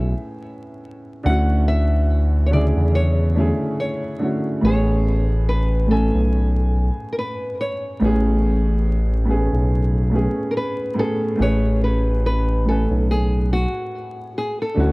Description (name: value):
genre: lo-fi hip hop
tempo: 71 BPM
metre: 4/4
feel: swing 58% on 16ths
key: A major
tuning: A4 = 441 Hz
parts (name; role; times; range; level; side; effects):
- nylon-string guitar; melody; 0.0-14.9 s; F#4 to F#5; -26 LUFS; equal; low-pass filter, tape echo
- dark upright piano; accompaniment; 0.0-14.9 s; A2 to G#5; -23 LUFS; equal; cassette tape, low-pass filter
- smooth synth bass; bass; 0.0-14.9 s; A1 to E2; -18 LUFS; equal; none
room: light reverb, studio reverb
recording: dark, warm production, vinyl crackle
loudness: -17 LUFS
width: side -24 dB against mid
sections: 0.0-11.4 A section; 11.4-14.9 B section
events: none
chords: 0.0 Amaj9; 1.3 Dmaj9; 4.6 Amaj9